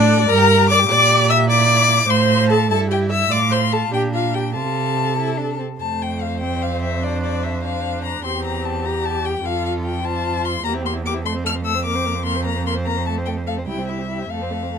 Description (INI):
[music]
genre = quick classical-period movement for string quartet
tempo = 99 BPM (dotted quarters)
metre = 6/8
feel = straight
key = F major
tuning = A4 = 440 Hz
[part]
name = warm violin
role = melody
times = 0.0-14.8 s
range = D5 to F6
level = -20 LUFS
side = left 8 dB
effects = none
[part]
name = rich violin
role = second line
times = 0.0-14.8 s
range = C4 to C5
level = -29 LUFS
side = left 4 dB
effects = none
[part]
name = rich viola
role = accompaniment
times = 0.0-14.8 s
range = A3 to E5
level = -23 LUFS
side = right 3 dB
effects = none
[part]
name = warm cello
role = bass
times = 0.0-14.8 s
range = C2 to C3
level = -21 LUFS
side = right 4 dB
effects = none
[sound]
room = light reverb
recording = close, detailed microphones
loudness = -17 LUFS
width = side -7 dB against mid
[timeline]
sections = 0.0-5.8 A section; 5.8-14.8 B section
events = none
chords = 0.3 Gm; 0.9 Gm/Bb; 1.5 Bb; 2.1 F/A; 2.7 Emadd11/G; 3.3 F/A; 3.9 Bb6; 4.5 F/C; 5.8 F; 7.0 Bbadd9/F (rootless); 8.2 C/E; 9.4 F; 10.6 C7/E; 11.2 F; 11.9 Bbadd9/F; 13.1 F; 13.7 C